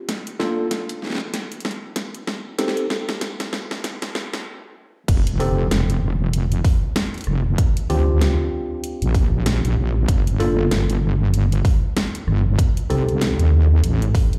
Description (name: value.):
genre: glitch hop.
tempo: 96 BPM.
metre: 4/4.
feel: swing 59% on 16ths.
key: unclear.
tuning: A4 = 439 Hz.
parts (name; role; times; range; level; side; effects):
mellow tine electric piano; stabs; 0.0-14.4 s; Bb3 to A4; -28 LUFS; equal; phaser, sidechain pumping, delay.
dubstep drum kit; drums; 0.1-14.4 s; crash cymbal, hi-hat, rim click, snare drum; -28 LUFS; equal; none.
wobble bass; bass; 5.1-14.1 s; F1 to Eb2; -20 LUFS; equal; chorus.
electronic kick drum; drums; 5.1-14.3 s; none; -20 LUFS; equal; none.
room: light reverb.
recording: played on a big sound system in a bare room, large studio reverb, high-pass filter.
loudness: -21 LUFS.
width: mono.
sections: 0.0-5.1 A section; 5.1-14.4 B section.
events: build-up 0.0-5.1; drum fill 0.0-4.5; filter sweep on tine electric piano 0.0-5.1; filter sweep 0.0-5.1; break 4.5-5.1; drop 5.1-14.4.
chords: 0.1 Bbmaj7; 2.6 Am7b5; 5.1 N.C.; 7.6 Bb; 10.1 N.C.; 12.6 Am7b5.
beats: | 0.08 0.71 1.33 1.96 | 2.58 3.21 3.83 4.46 | 5.08 5.71 6.33 6.96 | 7.58 8.21 8.83 9.46 | 10.08 10.71 11.33 11.96 | 12.58 13.21 13.83.